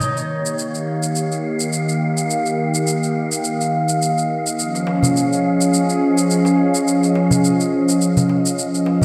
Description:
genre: organic downtempo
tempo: 105 BPM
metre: 4/4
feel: swing 56% on 16ths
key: Eb mixolydian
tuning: A4 = 444 Hz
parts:
  - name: warm analog pad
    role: sustained chords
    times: 0.0-9.0 s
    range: Eb3 to Eb5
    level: -20 LUFS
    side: equal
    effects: subtle chorus
  - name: kora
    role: arpeggios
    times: 0.0-1.2 s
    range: Bb3 to Eb5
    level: -31 LUFS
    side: equal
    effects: tape echo
  - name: shaker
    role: drums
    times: 0.0-8.8 s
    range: none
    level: -27 LUFS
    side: equal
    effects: overdrive
  - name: wind-like tuned noise texture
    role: texture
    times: 0.0-9.0 s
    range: F5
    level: -28 LUFS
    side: equal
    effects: built-in reverb, subtle chorus
  - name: darbuka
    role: percussion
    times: 4.7-9.0 s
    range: none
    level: -26 LUFS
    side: equal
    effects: none
room: wet lush hall reverb, RT60 1.6 s, digital ambience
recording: dreamy mix soaked in reverb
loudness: -18 LUFS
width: mono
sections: 0.0-9.0 A section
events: none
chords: 0.0 Eb; 4.6 Dbadd9

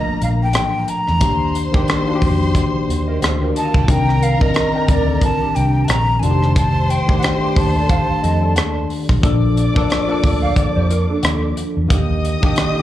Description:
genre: lush 1970s-style soul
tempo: 90 BPM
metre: 4/4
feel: swing 58% on 16ths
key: Bb major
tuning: A4 = 440 Hz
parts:
  - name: breathy jazz flute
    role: melody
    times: 0.0-8.9 s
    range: D5 to Bb5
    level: -22 LUFS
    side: left 1 dB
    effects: slapback echo
  - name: warm studio string section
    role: second line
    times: 0.0-12.8 s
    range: Bb3 to Eb6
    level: -25 LUFS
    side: equal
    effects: slapback echo
  - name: tine electric piano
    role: accompaniment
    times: 0.0-12.8 s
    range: D3 to Bb4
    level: -21 LUFS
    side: left 2 dB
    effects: lush chorus
  - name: vintage muted fingered electric bass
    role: bass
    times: 0.2-12.5 s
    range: F1 to F2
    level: -18 LUFS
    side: equal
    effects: none
  - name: tight funk drum kit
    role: drums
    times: 0.2-12.8 s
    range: hi-hat, kick drum, rim click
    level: -18 LUFS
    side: equal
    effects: none
  - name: mellow electric guitar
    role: riff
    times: 3.1-11.9 s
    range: D4 to G5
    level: -26 LUFS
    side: right 7 dB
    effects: ensemble chorus, slapback echo
room: small room reverb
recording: live gig heard through the venue's PA, club reverb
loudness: -14 LUFS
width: side -13 dB against mid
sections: 0.0-12.8 A section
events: none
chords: 0.0 Bbmaj7; 1.2 Ebmaj7; 3.9 Cm9; 6.2 F13; 9.2 Bbmaj7; 11.9 Ebmaj7

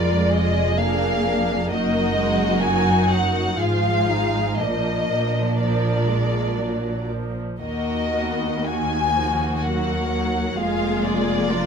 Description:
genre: classical, slow romantic movement for string orchestra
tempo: 61 BPM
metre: 3/4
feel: uneven beats, rubato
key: Eb minor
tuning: A4 = 440 Hz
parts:
  - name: warm studio violin section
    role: melody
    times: 0.0-11.7 s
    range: D5 to Ab5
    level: -24 LUFS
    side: left 2 dB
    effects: none
  - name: warm studio violin section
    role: second line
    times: 0.0-11.7 s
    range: D4 to D5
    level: -26 LUFS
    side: right 1 dB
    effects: none
  - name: warm studio viola section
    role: accompaniment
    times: 0.0-11.7 s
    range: Eb3 to F4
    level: -26 LUFS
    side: left 1 dB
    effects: none
  - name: warm studio cello section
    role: bass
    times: 0.0-11.7 s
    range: Eb2 to Bb2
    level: -26 LUFS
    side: right 1 dB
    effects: none
  - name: warm studio double bass section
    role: bass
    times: 0.0-11.7 s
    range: F1 to Eb2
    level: -26 LUFS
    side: right 2 dB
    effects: none
room: light reverb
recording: none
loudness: -19 LUFS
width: side -6 dB against mid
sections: 0.0-11.7 A section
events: none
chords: 0.0 Bb7/F; 1.7 Ebm/Gb; 3.6 Fm7/Ab; 4.6 Bb; 7.6 Ebm; 10.6 Bb7/F

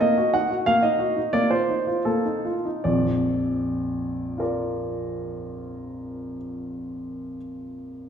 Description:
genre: classical-period piano sonatina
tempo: 75-93 BPM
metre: 2/4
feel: rubato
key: Bb major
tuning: A4 = 439 Hz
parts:
  - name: clear baby grand piano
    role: solo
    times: 0.0-8.1 s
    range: Bb1 to Gb5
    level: -23 LUFS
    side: equal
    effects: none
room: wet recital hall reverb, RT60 1.7 s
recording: recorded in a church or concert hall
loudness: -22 LUFS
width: side -8 dB against mid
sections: 0.0-2.8 A section; 2.8-5.9 B section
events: slowing down 0.0-2.8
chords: 0.0 Ebm/Bb; 1.3 F7/Bb; 2.8 Bb

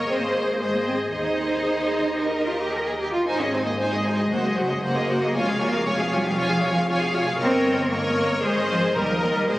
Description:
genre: quick classical-period movement for string orchestra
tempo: 115 BPM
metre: 4/4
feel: straight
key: Ab major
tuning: A4 = 440 Hz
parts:
  - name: rich chamber violin section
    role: melody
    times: 0.0-9.6 s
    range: Eb5 to Ab5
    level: -30 LUFS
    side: left 1 dB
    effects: none
  - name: rich chamber violin section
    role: second line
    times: 0.0-9.6 s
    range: Bb4 to F5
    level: -27 LUFS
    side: equal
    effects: none
  - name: rich chamber viola section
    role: accompaniment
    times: 0.0-9.6 s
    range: Eb4 to Bb4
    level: -27 LUFS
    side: equal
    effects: none
  - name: rich chamber double bass section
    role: bass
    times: 0.0-9.6 s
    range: F1 to Eb2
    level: -31 LUFS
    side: equal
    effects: none
  - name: warm chamber cello section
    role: bass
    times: 0.0-9.6 s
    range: F3 to Bb4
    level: -25 LUFS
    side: equal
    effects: none
room: wet concert hall reverb, RT60 2.5 s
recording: recorded on a phone in the room, studio reverb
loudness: -20 LUFS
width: side -17 dB against mid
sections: 0.0-9.6 A section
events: none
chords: 0.1 Ab; 1.1 Ab/Eb; 2.2 Eb; 3.3 Ab; 4.3 Ab7/Gb; 5.4 Db/F; 7.4 Eb7/G; 8.4 Ab; 9.0 Eb

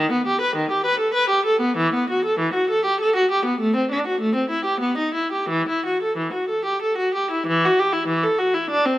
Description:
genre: classical, baroque-style suite movement for unaccompanied viola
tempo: 82-103 BPM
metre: 3/4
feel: rubato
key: E minor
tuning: A4 = 439 Hz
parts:
  - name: warm viola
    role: solo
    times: 0.0-9.0 s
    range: D#3 to B4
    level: -18 LUFS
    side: equal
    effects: none
room: moderate recital hall reverb, RT60 1.4 s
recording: close, detailed microphones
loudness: -19 LUFS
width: side -15 dB against mid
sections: 0.0-7.5 A section; 7.5-9.0 B section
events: none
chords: none

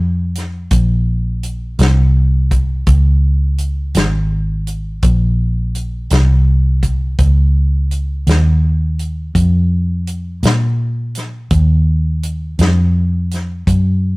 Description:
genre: slow blues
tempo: 56 BPM (dotted quarters)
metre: 12/8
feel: straight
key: Bb minor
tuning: A4 = 442 Hz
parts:
  - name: vintage muted fingered electric bass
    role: bass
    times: 0.0-14.2 s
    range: Ab1 to Bb2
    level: -13 LUFS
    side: equal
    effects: none
  - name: warm soul drum kit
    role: drums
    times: 0.4-13.8 s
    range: hi-hat, kick drum, snare drum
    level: -18 LUFS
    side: equal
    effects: none
room: light reverb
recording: rough rehearsal-room recording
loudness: -13 LUFS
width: side -24 dB against mid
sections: 0.0-14.2 A section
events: none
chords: none

